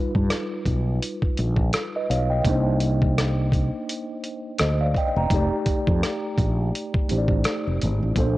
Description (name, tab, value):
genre	R&B, neo-soul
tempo	84 BPM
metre	4/4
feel	swing 56% on 16ths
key	unclear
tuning	A4 = 441 Hz
part	mellow tine electric piano	accompaniment	0.0-8.4 s	G3 to Bb5	-26 LUFS	equal	medium stereo tremolo, cassette tape
part	fretless electric bass	bass	0.2-8.4 s	E1 to G2	-22 LUFS	equal	tube saturation
part	dusty soul sampler-style drum kit	drums	0.2-8.3 s	hi-hat, kick drum, rim click	-25 LUFS	equal	cassette tape
room	light reverb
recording	home recording on cassette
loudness	-21 LUFS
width	side -17 dB against mid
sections	0.0-8.4 A section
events	none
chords	0.0 G7alt; 2.4 Cm9; 5.3 F13